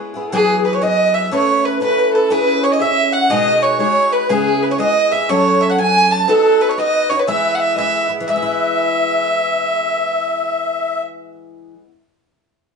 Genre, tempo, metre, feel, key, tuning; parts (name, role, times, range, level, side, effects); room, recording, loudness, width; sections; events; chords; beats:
celtic folk, Celtic polka; 121 BPM; 2/4; swing 64% on 8ths; E major; A4 = 441 Hz
picked twelve-string acoustic guitar; accompaniment; 0.0-11.9 s; B2 to C#5; -21 LUFS; left 1 dB
rich fiddle; melody; 0.3-11.0 s; G#4 to A5; -16 LUFS; right 4 dB
bowl-back mandolin; second line; 0.3-11.7 s; G#4 to A5; -26 LUFS; equal
musette accordion; second line; 0.3-11.0 s; G#4 to A5; -20 LUFS; left 5 dB
wet studio reverb, RT60 0.8 s; band playing live in one room, nothing above 10.6 kHz; -13 LUFS; side -5 dB against mid
0.3-8.3 A section; 8.3-10.3 B section
0.3 Eadd9; 1.3 Aadd9; 2.3 C#m; 3.3 B6; 4.3 C#m7; 5.3 F#m; 6.3 B; 7.3 E
| 0.32 0.82 | 1.31 1.81 | 2.31 2.81 | 3.30 3.80 | 4.30 4.79 | 5.29 5.79 | 6.29 6.78 | 7.28 7.78 | 8.28 8.78 | 9.27 9.77